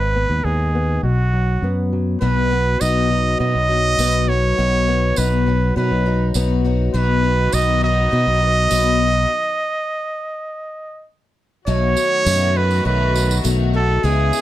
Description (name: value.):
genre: indie folk with a building arrangement.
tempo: 102 BPM.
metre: 4/4.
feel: straight.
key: unclear.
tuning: A4 = 440 Hz.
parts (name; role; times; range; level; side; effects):
bright trumpet; melody; 0.0-14.4 s; F#4 to D#5; -20 LUFS; right 2 dB; none.
fingerpicked old ladder-braced acoustic guitar; accompaniment; 0.0-6.9 s; F#2 to D#4; -24 LUFS; left 3 dB; none.
fingered electric bass; bass; 0.0-14.3 s; G#1 to B2; -18 LUFS; equal; none.
picked twelve-string acoustic guitar; accompaniment; 2.2-14.4 s; B2 to G#4; -24 LUFS; left 10 dB; none.
tambourine; percussion; 2.8-14.4 s; none; -28 LUFS; right 9 dB; none.
warm chamber string section; sustained chords; 6.9-14.4 s; B2 to F#4; -28 LUFS; left 1 dB; none.
room: light reverb.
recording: dark, warm production.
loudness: -15 LUFS.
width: side -14 dB against mid.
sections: 0.0-2.2 A section; 2.2-11.7 B section; 11.7-14.4 C section.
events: stop 9.3-11.7.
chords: 0.0 G#m; 1.0 B5; 2.2 B; 11.7 B7.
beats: 0.44 1.03 1.63 | 2.22 2.81 3.40 3.99 | 4.58 5.17 5.76 6.35 | 6.94 7.53 8.12 8.72 | 9.31 9.90 10.49 11.08 | 11.67 12.27 12.86 13.45 | 14.04.